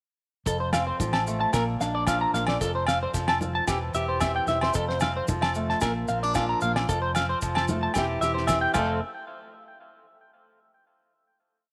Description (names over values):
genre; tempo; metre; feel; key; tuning
highlife guitar band; 112 BPM; 4/4; straight; F major; A4 = 440 Hz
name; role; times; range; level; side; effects
fingerpicked acoustic archtop guitar; accompaniment; 0.5-9.0 s; F2 to A4; -33 LUFS; equal; none
electric guitar at the edge of break-up; arpeggios; 0.5-9.0 s; G4 to Bb5; -30 LUFS; equal; lush chorus, tape echo
fingered electric bass; bass; 0.5-9.0 s; E1 to Bb1; -34 LUFS; equal; none
damped 70s drum kit; drums; 0.5-8.9 s; crash cymbal, kick drum, snare drum; -33 LUFS; equal; none
congas; percussion; 0.5-9.0 s; none; -38 LUFS; equal; none
maracas; percussion; 0.5-9.0 s; none; -41 LUFS; equal; none
agogo bells; percussion; 0.7-8.9 s; none; -34 LUFS; equal; none
room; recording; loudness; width
light reverb, studio reverb; none; -26 LUFS; mono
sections
0.5-9.0 groove; 9.0-11.1 final hit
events
none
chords
0.5 F; 1.5 Bb; 2.6 F; 3.7 C/E; 4.7 F; 5.8 Bb; 6.9 F; 7.9 C/E; 8.7 F; 9.0 N.C.